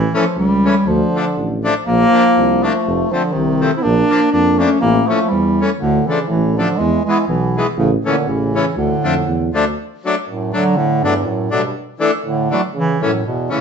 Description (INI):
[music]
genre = alpine folk, alpine dance band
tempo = 121 BPM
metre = 2/4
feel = swing 55% on 8ths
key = D harmonic minor, D major from 9.8 s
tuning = A4 = 442 Hz
[part]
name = warm bass clarinet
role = melody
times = 0.0-13.6 s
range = G2 to E4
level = -17 LUFS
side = left 1 dB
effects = none
[part]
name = mellow tuba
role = bass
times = 0.0-9.7 s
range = F1 to F2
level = -19 LUFS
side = right 1 dB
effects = none
[part]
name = accordion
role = accompaniment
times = 0.1-13.6 s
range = E3 to D4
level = -20 LUFS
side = left 3 dB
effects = none
[part]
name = warm euphonium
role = second line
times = 0.9-13.6 s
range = E2 to C4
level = -21 LUFS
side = right 5 dB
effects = none
[sound]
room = wet studio reverb, RT60 0.9 s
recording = band playing live in one room, nothing above 8.0 kHz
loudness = -14 LUFS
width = side -6 dB against mid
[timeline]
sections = 0.0-9.8 A section; 9.8-13.6 B section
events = none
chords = 0.0 A; 0.9 Dm; 1.9 Bbadd9; 2.9 F; 3.8 Bb; 4.8 A; 5.8 Dm; 6.8 E; 7.8 A; 8.8 Dm; 9.8 D; 11.8 Asus4; 12.7 A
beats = 0.37 | 0.87 1.36 | 1.86 2.36 | 2.85 3.34 | 3.83 4.33 | 4.82 5.32 | 5.81 6.31 | 6.80 7.29 | 7.79 8.28 | 8.78 9.27 | 9.77 10.27 | 10.77 11.26 | 11.75 12.24 | 12.73 13.23